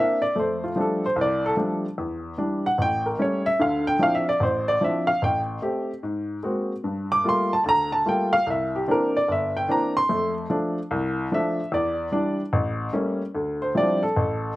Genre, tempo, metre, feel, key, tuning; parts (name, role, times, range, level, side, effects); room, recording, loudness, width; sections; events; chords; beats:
solo jazz; 148 BPM; 4/4; swing 65% on 8ths; D minor; A4 = 440 Hz
warm upright piano; solo; 0.0-14.5 s; G1 to D6; -21 LUFS; equal; slapback echo
little or no reverb; recorded outdoors, with no room sound; -21 LUFS; side -17 dB against mid
0.3-13.3 A section; 13.3-14.6 A section
upright piano solo 0.0-13.3, 13.3-14.6
0.3 F69; 2.0 Em9; 2.8 A7; 3.6 Dm9; 5.2 Am7; 6.0 G#9; 6.8 Gm9; 8.5 C9; 10.1 F6; 11.7 Em7; 12.5 A7b9; 13.3 Dm11
| 0.35 0.76 1.16 1.57 | 1.97 2.38 2.79 3.19 | 3.60 4.00 4.41 4.82 | 5.22 5.63 6.03 6.44 | 6.85 7.25 7.66 8.06 | 8.47 8.88 9.28 9.69 | 10.09 10.50 10.91 11.31 | 11.72 12.12 12.53 12.94 | 13.34 13.75 14.15